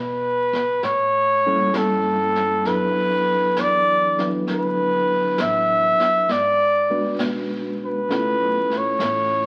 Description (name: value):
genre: jazz ballad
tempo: 66 BPM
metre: 4/4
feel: swing 68% on 8ths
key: unclear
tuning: A4 = 438 Hz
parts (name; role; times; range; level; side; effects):
- mellow trumpet; melody; 0.0-9.5 s; A4 to E5; -21 LUFS; equal; none
- upright bass; bass; 0.0-9.5 s; G#1 to B2; -38 LUFS; equal; none
- jazz brush drum kit; drums; 0.5-9.5 s; brushed snare drum, hi-hat, kick drum, snare drum; -34 LUFS; equal; none
- mellow tine electric piano; accompaniment; 1.5-9.5 s; F#3 to B4; -27 LUFS; equal; none
room: wet studio reverb, RT60 0.9 s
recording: very old 78 rpm record, vinyl crackle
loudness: -20 LUFS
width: mono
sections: 0.0-9.5 A section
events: none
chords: 0.0 N.C.; 0.8 A7b9; 2.6 D69; 6.3 G#m7b5; 8.1 C#7alt